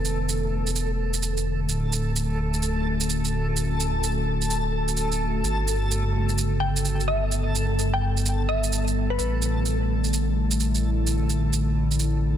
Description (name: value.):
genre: future garage.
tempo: 128 BPM.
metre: 4/4.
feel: swing 63% on 16ths.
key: unclear.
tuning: A4 = 441 Hz.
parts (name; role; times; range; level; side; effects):
warbly tape-like pad; sustained chords; 0.0-12.4 s; C#3 to B4; -29 LUFS; left 1 dB; chorus, built-in reverb.
dark detuned saw bass; bass; 0.0-12.4 s; D1 to A1; -25 LUFS; equal; none.
backwards swelling texture; texture; 0.0-12.4 s; A3 to A4; -30 LUFS; left 1 dB; built-in reverb.
shaker; drums; 0.1-12.1 s; none; -30 LUFS; right 7 dB; overdrive, studio reverb, soft clipping on snare.
glassy wavetable pluck; melody; 6.6-9.3 s; B4 to G5; -29 LUFS; left 2 dB; chorus, tape echo.
room: light reverb, digital ambience.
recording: dense, heavily limited modern master.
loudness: -22 LUFS.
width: side -10 dB against mid.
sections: 0.0-12.4 A section.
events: none.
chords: 0.0 Em7; 1.7 Dmaj7; 5.4 Gmaj9#11; 9.2 A7sus4.